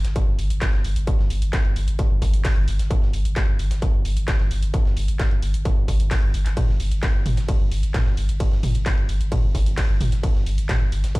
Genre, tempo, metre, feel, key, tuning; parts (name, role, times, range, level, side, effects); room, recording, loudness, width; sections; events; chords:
driving peak-time techno; 131 BPM; 4/4; straight; A4 = 443 Hz
saturated sub bass; bass; 0.0-11.1 s; G1; -24 LUFS; equal; tube saturation, sidechain pumping, low-pass filter
dusty soul sampler-style drum kit; drums; 0.0-11.2 s; hi-hat, snare drum; -41 LUFS; left 1 dB; high-pass filter on snare, sidechain pumping on hats, high-pass filter on hats
techno drum kit; drums; 0.0-11.2 s; handclaps, hi-hat, ride cymbal, toms; -30 LUFS; equal; sidechain pumping on hats, sidechain pumping on cymbals, sidechain pumping on toms
electronic kick drum; drums; 0.2-11.2 s; -21 LUFS; equal; distortion
digital ambience; played on a big sound system in a bare room, large studio reverb; -19 LUFS; side -22 dB against mid
0.0-11.2 A section